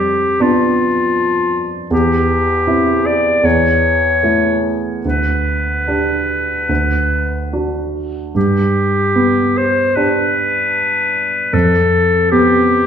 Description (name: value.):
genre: classical, romantic duo for clarinet and grand piano.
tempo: 71-80 BPM.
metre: 4/4.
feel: rubato.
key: G major.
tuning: A4 = 442 Hz.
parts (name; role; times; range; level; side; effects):
bright clarinet; melody; 0.0-12.9 s; F4 to D5; -15 LUFS; left 2 dB; none.
warm grand piano; accompaniment; 0.0-12.9 s; D2 to G4; -16 LUFS; right 1 dB; none.
room: wet recital hall reverb, RT60 1.4 s.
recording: minimal, uncompressed stereo recording.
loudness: -13 LUFS.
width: side -8 dB against mid.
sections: 0.0-12.9 A section.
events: none.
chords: 0.0 G7/F; 1.9 C/E; 3.4 A/E; 5.0 G/D; 6.7 D; 8.4 G; 11.5 G7/F.